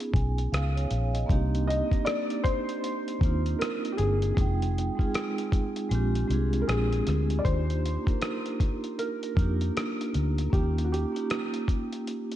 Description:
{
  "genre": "lo-fi hip hop",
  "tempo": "78 BPM",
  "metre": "4/4",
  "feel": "swing 58% on 16ths",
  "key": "unclear",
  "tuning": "A4 = 437 Hz",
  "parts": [
    { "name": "vibraphone with soft mallets", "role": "accompaniment", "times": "0.0-12.4 s", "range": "Ab3 to Ab5", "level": "-31 LUFS", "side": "right 2 dB", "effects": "cassette tape, low-pass filter" },
    { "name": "dusty soul sampler-style drum kit", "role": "drums", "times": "0.0-12.4 s", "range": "hi-hat, kick drum, rim click", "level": "-29 LUFS", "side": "equal", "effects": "vintage 12-bit sampler grit" },
    { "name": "vintage muted fingered electric bass", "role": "bass", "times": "0.1-11.0 s", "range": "F1 to F2", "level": "-27 LUFS", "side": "equal", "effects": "none" },
    { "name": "felt-muted upright piano", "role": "melody", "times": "1.7-12.0 s", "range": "Gb4 to Eb5", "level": "-33 LUFS", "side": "left 1 dB", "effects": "low-pass filter, tape echo" }
  ],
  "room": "light reverb, small room ambience",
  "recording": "cassette tape",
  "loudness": "-25 LUFS",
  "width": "side -12 dB against mid",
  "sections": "0.0-12.4 A section",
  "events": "vibraphone fill 0.0-1.3, 12.1; kick muted 5.9-7.5",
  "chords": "0.0 Db9; 1.3 Cm9; 4.4 Fm7; 5.9 Bb13; 7.5 Ebmaj7; 10.5 Eb9",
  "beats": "0.53 | 1.30 2.07 2.83 3.60 | 4.37 5.14 5.91 6.68 | 7.45 8.22 8.99 9.76 | 10.53 11.30 12.07"
}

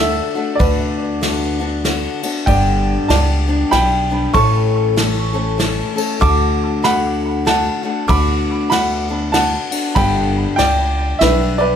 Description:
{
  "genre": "honky-tonk and classic country",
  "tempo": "96 BPM",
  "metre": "3/4",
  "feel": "swing 61% on 8ths",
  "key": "D major",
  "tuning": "A4 = 440 Hz",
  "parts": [
    { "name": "bright upright piano", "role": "melody", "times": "0.0-11.8 s", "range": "A4 to D6", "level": "-18 LUFS", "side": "right 1 dB", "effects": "tape echo" },
    { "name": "picked steel-string acoustic guitar", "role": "accompaniment", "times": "0.0-11.8 s", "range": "G2 to A4", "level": "-21 LUFS", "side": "left 5 dB", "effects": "none" },
    { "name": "upright bass", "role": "bass", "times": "0.0-11.7 s", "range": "G1 to D2", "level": "-19 LUFS", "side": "equal", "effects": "none" },
    { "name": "soft brush drum kit", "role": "drums", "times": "0.6-11.4 s", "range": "kick drum, ride cymbal, snare drum", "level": "-21 LUFS", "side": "equal", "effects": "none" }
  ],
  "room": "moderate studio reverb, RT60 0.7 s",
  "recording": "none",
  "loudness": "-14 LUFS",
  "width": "side -8 dB against mid",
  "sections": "0.0-11.8 A section",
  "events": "none",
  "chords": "0.0 D; 0.6 Bm/D; 2.5 G; 4.3 A; 6.2 D; 8.1 Bm/D; 10.0 G",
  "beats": "| 0.60 1.23 1.85 | 2.47 3.10 3.72 | 4.34 4.97 5.59 | 6.22 6.84 7.46 | 8.09 8.71 9.34 | 9.96 10.59 11.21"
}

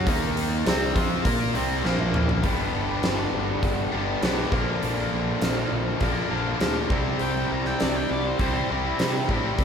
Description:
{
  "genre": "classic rock",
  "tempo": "101 BPM",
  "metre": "4/4",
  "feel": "straight",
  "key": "unclear",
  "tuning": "A4 = 440 Hz",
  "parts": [
    { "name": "distorted electric guitar", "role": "riff", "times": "0.0-9.6 s", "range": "G2 to Bb4", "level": "-28 LUFS", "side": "left 8 dB", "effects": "overdrive" },
    { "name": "tight distorted guitar", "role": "riff", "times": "0.0-9.6 s", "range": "G2 to Bb4", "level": "-28 LUFS", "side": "right 7 dB", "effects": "distortion" },
    { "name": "fuzz picked electric bass", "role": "bass", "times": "0.0-9.6 s", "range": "G1 to C3", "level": "-29 LUFS", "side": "equal", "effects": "overdrive" },
    { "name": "huge arena drum kit", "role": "drums", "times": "0.1-9.6 s", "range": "hi-hat, kick drum, snare drum, toms", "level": "-27 LUFS", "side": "equal", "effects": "none" },
    { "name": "octave-fuzz lead guitar", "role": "second line", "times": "7.2-8.7 s", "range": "C5 to Bb5", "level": "-32 LUFS", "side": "left 3 dB", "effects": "distortion" }
  ],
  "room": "moderate large studio reverb, RT60 0.8 s",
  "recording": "band playing live in one room",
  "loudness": "-22 LUFS",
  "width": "side -7 dB against mid",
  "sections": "0.0-2.4 A section; 2.4-9.6 B section",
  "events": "drum fill 1.8-2.4",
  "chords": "0.1 Eb5; 0.7 C5; 1.8 Bb5; 2.4 G; 4.5 Bb; 6.9 C",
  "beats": "| 0.07 0.66 1.25 1.85 | 2.44 3.04 3.63 4.23 | 4.83 5.42 6.01 6.61 | 7.21 7.80 8.39 8.99 | 9.58"
}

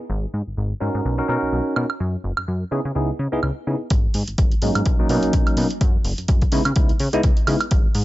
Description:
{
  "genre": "filtered disco house",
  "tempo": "126 BPM",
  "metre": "4/4",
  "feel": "swing 56% on 16ths",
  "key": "unclear",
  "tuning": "A4 = 439 Hz",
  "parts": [
    { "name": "plucky analog bass", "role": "bass", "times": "0.1-8.0 s", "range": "F#1 to C#3", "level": "-24 LUFS", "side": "equal", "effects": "sidechain pumping, low-pass filter" },
    { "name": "bell-like tine electric piano", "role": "accompaniment", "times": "0.8-7.6 s", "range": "F#3 to A#4", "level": "-23 LUFS", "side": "equal", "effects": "phaser, sidechain pumping, low-pass filter" },
    { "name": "electronic woodblock and hi-hat", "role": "drums", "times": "1.8-8.0 s", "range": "none", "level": "-27 LUFS", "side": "right 4 dB", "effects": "overdrive, sidechain pumping on perc, sidechain pumping on hats" },
    { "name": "electronic kick drum", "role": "drums", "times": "3.9-7.8 s", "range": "none", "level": "-18 LUFS", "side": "equal", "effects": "overdrive" }
  ],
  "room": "little or no reverb",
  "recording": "nothing above 7.7 kHz",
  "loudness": "-18 LUFS",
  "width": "side -16 dB against mid",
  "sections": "0.0-3.9 A section; 3.9-8.0 B section",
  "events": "filter sweep 0.0-3.9, 3.9-8.0; build-up 3.9-8.0",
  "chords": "0.1 G#sus2; 1.0 Bmaj7; 2.0 N.C.; 2.7 C#m9; 3.9 G#sus2; 4.9 Bmaj7; 5.8 N.C.; 6.5 C#m9",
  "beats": "| 0.10 0.57 1.05 1.53 | 2.00 2.48 2.95 3.43 | 3.91 4.38 4.86 5.33 | 5.81 6.29 6.76 7.24 | 7.72"
}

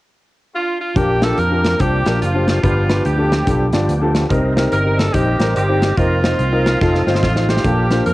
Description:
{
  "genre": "uptempo gospel",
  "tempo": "144 BPM",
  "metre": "4/4",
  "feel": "swing 63% on 8ths",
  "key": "Bb major",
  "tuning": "A4 = 441 Hz",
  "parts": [
    { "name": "mellow horn section", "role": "melody", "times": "0.5-8.1 s", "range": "A3 to Bb4", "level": "-25 LUFS", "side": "left 2 dB", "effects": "cassette tape" },
    { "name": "edgy alto saxophone", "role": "melody", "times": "0.6-8.1 s", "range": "F4 to Bb4", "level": "-22 LUFS", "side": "right 2 dB", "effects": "cassette tape" },
    { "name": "warm upright piano", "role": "accompaniment", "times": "1.0-8.1 s", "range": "G2 to D5", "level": "-19 LUFS", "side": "left 1 dB", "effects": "cassette tape" },
    { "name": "overdriven tonewheel organ", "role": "sustained chords", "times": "1.0-8.1 s", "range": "F3 to Bb4", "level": "-25 LUFS", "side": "right 2 dB", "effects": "slow rotary speaker, chorus vibrato, cassette tape" },
    { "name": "fingered electric bass", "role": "bass", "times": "1.0-8.1 s", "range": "F1 to F2", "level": "-18 LUFS", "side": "equal", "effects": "transformer saturation" },
    { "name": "modern studio drum kit", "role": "drums", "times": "1.0-8.1 s", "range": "hi-hat, kick drum, snare drum", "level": "-20 LUFS", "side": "equal", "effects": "none" }
  ],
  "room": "light reverb",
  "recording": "home recording on cassette",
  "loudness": "-14 LUFS",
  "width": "side -18 dB against mid",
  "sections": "1.0-8.1 A section",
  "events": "drum fill 6.8-7.6",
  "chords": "0.0 N.C.; 1.0 Bb6; 2.6 G7; 4.3 Cm7; 6.0 F7sus4; 6.8 F7",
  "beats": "0.12 0.54 | 0.96 1.38 1.80 2.21 | 2.63 3.05 3.47 3.89 | 4.30 4.72 5.14 5.56 | 5.98 6.39 6.81 7.23 | 7.65 8.06"
}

